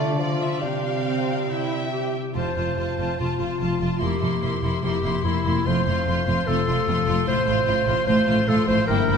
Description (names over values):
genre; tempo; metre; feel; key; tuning
classical; 136-153 BPM; 4/4; rubato; F major; A4 = 438 Hz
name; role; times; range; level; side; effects
warm symphonic violin section; melody; 0.0-9.2 s; D5 to C6; -32 LUFS; left 3 dB; none
warm symphonic violin section; second line; 0.0-9.2 s; E4 to F5; -31 LUFS; left 3 dB; none
mellow bassoon; accompaniment; 0.0-1.9 s; F3 to A3; -29 LUFS; right 3 dB; none
warm symphonic viola section; accompaniment; 0.0-9.2 s; A3 to G4; -30 LUFS; right 4 dB; none
concert harp; arpeggios; 0.0-9.2 s; F2 to C5; -28 LUFS; left 9 dB; none
rich symphonic cello section; bass; 0.0-9.2 s; F2 to D3; -27 LUFS; right 3 dB; none
warm clarinet; second line; 2.4-9.2 s; E4 to C5; -25 LUFS; left 1 dB; none
warm symphonic double bass section; bass; 2.4-9.2 s; F1 to A1; -29 LUFS; right 4 dB; none
room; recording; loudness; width
wet scoring stage reverb, RT60 2.0 s; none; -20 LUFS; side -6 dB against mid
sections
0.0-2.4 A section; 2.4-9.2 B section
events
none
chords
0.0 Dm; 0.6 Csus4; 1.5 C; 2.4 F; 4.0 C7/F; 5.7 F; 7.3 F/A